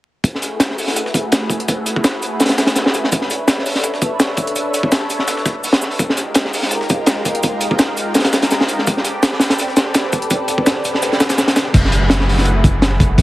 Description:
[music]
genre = drum and bass, jungle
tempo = 167 BPM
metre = 4/4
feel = swing 53% on 16ths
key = unclear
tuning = A4 = 440 Hz
[part]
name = lush unison pad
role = sustained chords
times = 0.4-13.2 s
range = Ab3 to E5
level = -21 LUFS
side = equal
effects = chorus, phaser
[part]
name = breakbeat sampler-style drum kit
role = drums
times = 0.2-11.7 s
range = hi-hat, shaker, snare drum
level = -25 LUFS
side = left 1 dB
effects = overdrive, high-pass filter on perc, high-pass filter on snare, high-pass filter on hats, high-pass filter on room
[part]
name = crunchy breakbeat drum kit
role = drums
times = 0.2-13.2 s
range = crash cymbal, hi-hat, kick drum, snare drum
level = -15 LUFS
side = equal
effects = high-pass filter on kick, high-pass filter on hats, high-pass filter on cymbals, high-pass filter on snare, high-pass filter on room
[part]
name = noise sweep and downlifter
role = sound effects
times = 10.6-13.2 s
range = none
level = -25 LUFS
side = right 1 dB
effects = none
[part]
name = soft dub sub bass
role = bass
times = 11.7-13.2 s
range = F#1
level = -16 LUFS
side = equal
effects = none
[sound]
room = light reverb, studio reverb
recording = heavily compressed radio sound, vinyl crackle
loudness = -14 LUFS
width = side -17 dB against mid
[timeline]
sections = 0.2-11.7 A section; 11.7-13.2 B section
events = noise sweep 10.6-11.7; kick drops out 11.0-11.7; drop 11.7-13.2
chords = 0.2 F#m11; 3.1 Bm11; 6.0 Fm11; 8.9 Am11; 11.7 F#m11

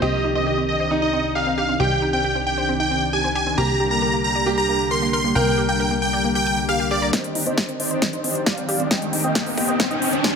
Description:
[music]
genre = uplifting trance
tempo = 135 BPM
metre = 4/4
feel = straight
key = C minor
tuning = A4 = 442 Hz
[part]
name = supersaw chords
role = melody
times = 0.0-10.4 s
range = C5 to C6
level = -23 LUFS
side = equal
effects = sidechain pumping, low-pass filter, tape echo
[part]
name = clear concert grand piano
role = second line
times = 0.0-7.0 s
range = Eb4 to Bb4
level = -26 LUFS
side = right 1 dB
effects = dub echo
[part]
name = lush unison pad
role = sustained chords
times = 0.0-10.4 s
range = C3 to G4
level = -25 LUFS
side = left 1 dB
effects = chorus, sidechain pumping
[part]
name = analog pluck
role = arpeggios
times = 0.0-10.3 s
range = Bb3 to Bb5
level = -28 LUFS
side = right 1 dB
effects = chorus, sidechain pumping, ping-pong delay
[part]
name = plucky analog bass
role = bass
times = 0.0-7.1 s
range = C2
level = -28 LUFS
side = equal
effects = sidechain pumping
[part]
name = big-room dance drum kit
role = drums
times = 7.1-10.3 s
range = hi-hat, snare drum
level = -23 LUFS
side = left 1 dB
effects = overdrive, high-pass filter on snare, high-pass filter on hats
[part]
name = electronic kick drum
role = drums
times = 7.1-10.3 s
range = none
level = -27 LUFS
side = left 1 dB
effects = overdrive, high-pass filter on kick
[part]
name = riser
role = sound effects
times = 7.9-10.4 s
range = none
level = -26 LUFS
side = left 2 dB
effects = none
[sound]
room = moderate lush hall reverb, RT60 1.7 s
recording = none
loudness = -18 LUFS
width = side -6 dB against mid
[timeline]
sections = 0.0-7.1 A section; 7.1-10.4 B section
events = filter sweep on synth arpeggio sound 0.0-7.1; filter sweep on analog synth pad 0.0-7.1; build-up 7.1-10.4; drum fill 7.1-10.4; filter sweep on supersaw synth 7.1-10.4; riser 7.9-10.4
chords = 0.0 Cmadd9; 3.6 Gm/C; 7.1 Cmadd9

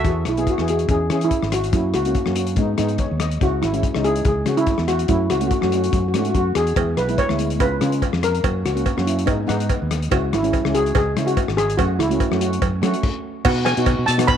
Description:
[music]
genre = calypso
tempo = 143 BPM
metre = 4/4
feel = swing 54% on 16ths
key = unclear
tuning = A4 = 438 Hz
[part]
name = steel pan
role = accompaniment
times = 0.0-14.4 s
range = G#3 to F#5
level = -24 LUFS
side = equal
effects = none
[part]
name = fingered electric bass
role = bass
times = 0.0-14.4 s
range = G#1 to F#3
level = -23 LUFS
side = equal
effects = none
[part]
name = warm soul drum kit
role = drums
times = 0.0-14.4 s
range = crash cymbal, hi-hat, kick drum, rim click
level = -23 LUFS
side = left 2 dB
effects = none
[part]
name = steel pan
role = melody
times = 0.1-14.4 s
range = E4 to B5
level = -22 LUFS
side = equal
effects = none
[part]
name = cowbell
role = percussion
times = 6.8-14.4 s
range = none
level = -26 LUFS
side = right 13 dB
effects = none
[sound]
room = light reverb, small room ambience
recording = 1960s-style stereo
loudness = -17 LUFS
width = side -9 dB against mid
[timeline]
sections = 0.1-13.5 A section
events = steel pan fill 2.8-3.4, 9.3-10.1; stop 13.0-13.5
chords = 0.1 E; 0.9 C#m/E; 1.7 F#; 2.6 G#m7; 3.4 C#m; 5.1 F#m; 6.8 E6; 7.6 C#7; 8.4 F#7; 9.3 G#m; 10.1 C#m; 11.8 F#m7; 13.5 B

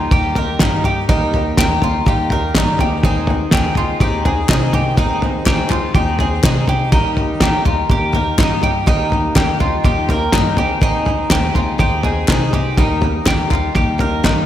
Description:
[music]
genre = indie folk with a building arrangement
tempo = 123 BPM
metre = 4/4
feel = straight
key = Eb major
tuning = A4 = 437 Hz
[part]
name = dark baby grand piano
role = accompaniment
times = 0.0-14.5 s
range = Eb2 to G5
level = -28 LUFS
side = equal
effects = none
[part]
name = fingerpicked steel-string acoustic guitar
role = accompaniment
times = 0.0-1.1 s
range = none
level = barely audible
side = none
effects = none
[part]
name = picked twelve-string acoustic guitar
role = accompaniment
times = 0.0-14.5 s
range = Eb3 to Ab4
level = -22 LUFS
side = left 5 dB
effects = slapback echo
[part]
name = bowl-back mandolin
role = arpeggios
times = 0.0-14.5 s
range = Eb4 to Bb4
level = -20 LUFS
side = right 2 dB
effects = digital delay, slapback echo
[part]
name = upright bass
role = bass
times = 0.0-14.5 s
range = Eb2 to C3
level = -22 LUFS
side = equal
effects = none
[part]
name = cloth-damped thuddy drum kit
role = drums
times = 0.1-14.4 s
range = kick drum, snare drum, toms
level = -16 LUFS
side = equal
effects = none
[part]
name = group handclap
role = percussion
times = 0.6-14.4 s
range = none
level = -28 LUFS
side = left 8 dB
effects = none
[sound]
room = moderate scoring stage reverb, RT60 2.0 s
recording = big arena sound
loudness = -13 LUFS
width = side -11 dB against mid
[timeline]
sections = 0.0-14.5 A section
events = grand piano fill 1.6-3.0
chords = 0.0 Eb; 2.8 Ab/Eb; 6.9 Eb; 10.6 Ab/Eb; 12.8 Eb

